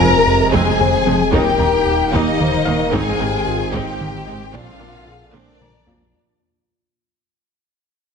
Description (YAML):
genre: cinematic, hybrid orchestral and electronic film score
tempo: 75 BPM (dotted quarters)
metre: 6/8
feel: straight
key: unclear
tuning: A4 = 445 Hz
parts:
  - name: warm studio violin section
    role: melody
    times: 0.0-6.1 s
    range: D5 to Bb5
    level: -21 LUFS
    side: left 5 dB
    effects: none
  - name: warm symphonic violin section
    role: second line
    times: 0.0-6.1 s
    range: D4 to Bb4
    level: -21 LUFS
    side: left 2 dB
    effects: none
  - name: warm symphonic viola section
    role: accompaniment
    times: 0.0-6.0 s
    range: Ab3 to Eb4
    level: -24 LUFS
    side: right 3 dB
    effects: none
  - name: clear trombone section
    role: sustained chords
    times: 0.0-5.9 s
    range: C3 to C4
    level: -25 LUFS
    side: right 6 dB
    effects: none
  - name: thumb-piano-like synth pluck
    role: arpeggios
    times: 0.0-6.0 s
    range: Eb3 to Bb4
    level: -26 LUFS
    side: right 2 dB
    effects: chorus, digital delay
  - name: round analog bass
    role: riff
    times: 0.0-6.0 s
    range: Eb2 to Bb3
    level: -24 LUFS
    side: left 2 dB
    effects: none
  - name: saturated sub bass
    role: bass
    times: 0.0-6.1 s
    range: Eb1 to Bb1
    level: -30 LUFS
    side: equal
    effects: none
  - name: warm symphonic cello section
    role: bass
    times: 0.0-5.9 s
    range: Eb2 to Bb2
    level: -26 LUFS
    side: right 2 dB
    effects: none
  - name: warm symphonic double bass section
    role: bass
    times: 0.0-5.9 s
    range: F1 to Eb2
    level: -26 LUFS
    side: right 4 dB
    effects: none
  - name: bright baby grand piano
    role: texture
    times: 0.0-6.2 s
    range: F5 to Bb5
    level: -30 LUFS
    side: left 1 dB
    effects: digital delay
  - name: mellow French horn section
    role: sustained chords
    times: 0.5-5.7 s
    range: D4 to C5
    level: -23 LUFS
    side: left 5 dB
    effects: none
  - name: taiko ensemble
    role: drums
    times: 0.5-6.1 s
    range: none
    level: -26 LUFS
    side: equal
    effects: none
room: moderate scoring stage reverb, RT60 1.6 s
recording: heavily compressed radio sound, multiband compression, nothing above 10.4 kHz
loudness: -14 LUFS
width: side -6 dB against mid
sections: 0.0-6.1 A section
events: fade-out 0.0-6.1; drum fill 5.3-6.1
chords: 0.0 Fm; 1.3 Eb; 2.9 Ab; 4.5 Bbadd9